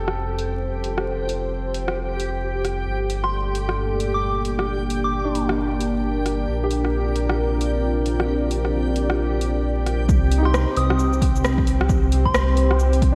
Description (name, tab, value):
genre	future garage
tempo	133 BPM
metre	4/4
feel	swing 61% on 16ths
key	unclear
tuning	A4 = 441 Hz
part	clear upright piano	accompaniment	0.0-13.2 s	D4 to A4	-34 LUFS	equal	sidechain pumping, analog delay
part	dark analog pad	sustained chords	0.0-13.2 s	Bb3 to D5	-28 LUFS	equal	chorus, sidechain pumping
part	dark detuned saw bass	bass	0.0-13.2 s	F1 to C2	-25 LUFS	equal	sidechain pumping
part	backwards swelling texture	texture	0.0-13.2 s	G4 to G5	-34 LUFS	equal	built-in reverb
part	deep house drum kit	drums	0.1-13.1 s	hi-hat, rim click, shaker	-30 LUFS	equal	overdrive, low-pass filter on hats, low-pass filter on snare, low-pass filter on perc
part	soft synth bell	melody	3.2-5.4, 10.5-12.9 s	C6 to Eb6	-31 LUFS	equal	chorus, analog delay
part	electronic kick drum	drums	10.1-13.1 s	none	-22 LUFS	equal	overdrive
room	wet lush hall reverb, RT60 2.2 s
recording	dreamy mix soaked in reverb, vinyl crackle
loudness	-22 LUFS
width	mono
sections	0.0-10.1 A section; 10.1-13.2 B section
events	none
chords	0.0 Fsus2; 2.9 Gmadd9; 6.5 Bbadd9; 10.1 Cm